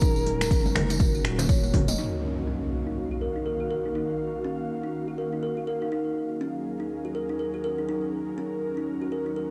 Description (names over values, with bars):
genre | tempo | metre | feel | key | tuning
afro house | 122 BPM | 4/4 | swing 59% on 16ths | Eb minor | A4 = 440 Hz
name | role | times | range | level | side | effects
expressive synth lead | melody | 0.0-1.5 s | Bb4 | -35 LUFS | equal | chorus, cassette tape, tape echo
ethereal airy pad | sustained chords | 0.0-9.5 s | Eb2 to F5 | -36 LUFS | equal | ensemble chorus, built-in reverb, sidechain pumping, cassette tape
kalimba | arpeggios | 0.0-9.5 s | Bb3 to Eb5 | -32 LUFS | equal | sidechain pumping, low-pass filter, cassette tape, tape echo
round analog bass | bass | 0.0-1.9 s | Eb1 to Gb1 | -32 LUFS | equal | transformer saturation, sidechain pumping
deep house drum kit | drums | 0.0-2.0 s | finger snaps, hi-hat, toms | -35 LUFS | equal | overdrive
electronic kick drum | drums | 0.0-1.9 s | none | -26 LUFS | equal | overdrive
tambourine | percussion | 0.0-2.0 s | none | -38 LUFS | equal | none
congas | percussion | 0.3-2.0 s | none | -33 LUFS | equal | none
impact | sound effects | 2.0-4.0 s | none | -36 LUFS | equal | none
room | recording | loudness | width
light reverb, digital ambience | home recording on cassette | -28 LUFS | mono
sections
0.0-2.0 A section; 2.0-9.5 B section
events
filter sweep on kalimba 0.0-2.0; drum fill 1.7; impact 2.0-4.0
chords
0.0 Gb/Eb; 2.0 Ebm; 5.9 Gb/Eb